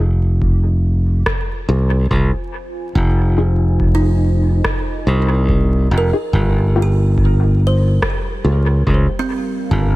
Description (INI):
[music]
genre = ambient dub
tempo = 71 BPM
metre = 4/4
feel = straight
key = F minor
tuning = A4 = 440 Hz
[part]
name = deep dark ambient pad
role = sustained chords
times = 1.5-10.0 s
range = G3 to Ab5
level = -32 LUFS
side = equal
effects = chorus, built-in reverb
[part]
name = filtered dub chord stab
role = stabs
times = 0.0-8.6 s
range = Bb3 to Ab4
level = -27 LUFS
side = left 3 dB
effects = lush chorus, dub echo
[part]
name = modern bright fingered electric bass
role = bass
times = 0.0-10.0 s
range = F1 to Db2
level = -13 LUFS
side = equal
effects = none
[part]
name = electronic kick drum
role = drums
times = 0.4-9.9 s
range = none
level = -21 LUFS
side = equal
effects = none
[part]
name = electronic rim click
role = drums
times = 1.3-8.2 s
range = none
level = -25 LUFS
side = equal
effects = dub echo
[part]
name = kalimba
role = arpeggios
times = 3.9-10.0 s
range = C4 to C5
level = -24 LUFS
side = right 3 dB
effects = dub echo
[sound]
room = little or no reverb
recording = vinyl crackle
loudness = -13 LUFS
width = side -18 dB against mid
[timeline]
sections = 0.0-10.0 A section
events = fade-in on ambient pad 0.0-10.0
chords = 0.0 Fm7; 6.3 Gm7b5